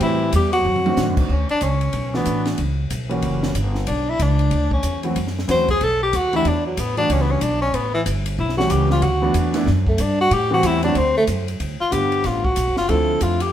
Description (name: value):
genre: jazz, small-group swing and bop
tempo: 186 BPM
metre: 4/4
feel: swing 62% on 8ths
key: D major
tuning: A4 = 440 Hz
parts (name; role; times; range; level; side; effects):
- breathy tenor saxophone; melody; 0.0-13.5 s; E3 to C5; -20 LUFS; left 1 dB; plate reverb
- breathy trombone; second line; 0.0-1.1 s; E3 to G3; -28 LUFS; right 2 dB; none
- warm concert grand piano; accompaniment; 0.0-13.4 s; D3 to F#5; -23 LUFS; right 1 dB; none
- upright bass; bass; 0.0-13.5 s; F#1 to A2; -22 LUFS; equal; none
- compact cocktail drum kit; drums; 0.0-13.5 s; crash cymbal, hi-hat, kick drum, ride cymbal, snare drum, toms; -27 LUFS; equal; none
room: wet studio reverb, RT60 0.9 s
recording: heard from further back in the room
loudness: -17 LUFS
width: side -10 dB against mid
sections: 0.0-1.3 A section; 1.3-11.6 B section; 11.6-13.5 B section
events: drum fill 0.7-1.0; tenor saxophone solo 1.3-13.5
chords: 0.0 Am7; 0.7 D7b9; 1.3 D69; 2.6 C#m7b5; 3.2 F#7b9; 3.9 Bmadd9; 5.2 F#m7b5; 5.8 B7; 6.5 Em11; 7.7 A7; 9.0 D69; 10.3 Am7; 11.0 D; 11.6 Gmaj7; 12.9 Dm9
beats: | 0.01 0.33 0.66 0.98 | 1.30 1.62 1.95 2.27 | 2.59 2.91 3.23 3.56 | 3.88 4.20 4.52 4.84 | 5.17 5.49 5.81 6.13 | 6.45 6.78 7.10 7.42 | 7.74 8.06 8.38 8.71 | 9.03 9.35 9.67 9.99 | 10.32 10.64 10.96 11.28 | 11.61 11.93 12.25 12.57 | 12.90 13.22